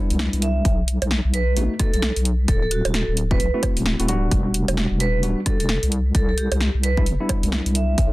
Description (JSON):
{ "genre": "UK garage, two-step garage", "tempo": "131 BPM", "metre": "4/4", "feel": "swing 61% on 16ths", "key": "unclear", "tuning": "A4 = 441 Hz", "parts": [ { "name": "mellow tine electric piano", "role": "stabs", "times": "0.0-8.0 s", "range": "G3 to F#4", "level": "-26 LUFS", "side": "left 1 dB", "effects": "overdrive, dub echo" }, { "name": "deep soft wobble bass", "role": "bass", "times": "0.1-8.1 s", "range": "D1 to C2", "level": "-21 LUFS", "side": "equal", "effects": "chorus, sidechain pumping" }, { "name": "punchy analog drum machine", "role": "drums", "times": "0.1-8.1 s", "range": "bongos, hi-hat, rim click, snare drum", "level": "-25 LUFS", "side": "right 1 dB", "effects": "none" }, { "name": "vibraphone with medium hard mallets", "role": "melody", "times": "0.4-8.0 s", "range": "F#4 to E5", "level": "-28 LUFS", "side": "right 3 dB", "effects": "dub echo" }, { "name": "electronic kick drum", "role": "drums", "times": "0.7-8.1 s", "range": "none", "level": "-21 LUFS", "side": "equal", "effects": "none" } ], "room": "light reverb", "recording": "dense, heavily limited modern master", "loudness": "-18 LUFS", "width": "side -19 dB against mid", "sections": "0.0-8.1 A section", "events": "none", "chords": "0.0 Cmaj7; 0.7 B7; 2.5 D7; 4.3 Em9; 5.9 Cmaj7" }